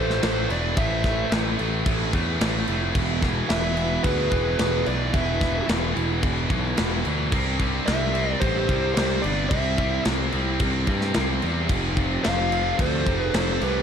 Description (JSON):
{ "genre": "heavy metal", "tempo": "110 BPM", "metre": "4/4", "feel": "straight", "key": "A minor", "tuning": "A4 = 441 Hz", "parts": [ { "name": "high-gain lead guitar", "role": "melody", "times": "0.0-13.8 s", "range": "B4 to F5", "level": "-28 LUFS", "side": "equal", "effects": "distortion, tape echo" }, { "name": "bluesy overdriven lead guitar", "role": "second line", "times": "0.0-13.8 s", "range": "G4 to C5", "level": "-33 LUFS", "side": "right 6 dB", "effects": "distortion" }, { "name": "phased analog pad", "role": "sustained chords", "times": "0.0-13.8 s", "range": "C3 to C5", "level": "-35 LUFS", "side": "right 1 dB", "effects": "none" }, { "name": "scooped high-gain guitar", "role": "riff", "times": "0.0-13.8 s", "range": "E2 to C4", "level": "-29 LUFS", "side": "left 16 dB", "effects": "distortion" }, { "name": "scooped high-gain guitar", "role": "riff", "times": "0.0-13.8 s", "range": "E2 to C4", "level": "-30 LUFS", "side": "right 13 dB", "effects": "distortion" }, { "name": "fuzz picked electric bass", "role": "bass", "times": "0.0-13.8 s", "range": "E1 to G2", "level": "-26 LUFS", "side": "equal", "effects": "overdrive" }, { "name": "tight metal drum kit", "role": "drums", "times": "0.1-13.7 s", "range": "crash cymbal, kick drum, snare drum", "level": "-26 LUFS", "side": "equal", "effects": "none" } ], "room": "little or no reverb", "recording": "dark, warm production", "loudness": "-21 LUFS", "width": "side -8 dB against mid", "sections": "0.0-13.8 A section", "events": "none", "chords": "0.0 Am; 3.0 E5; 7.3 C; 11.7 F" }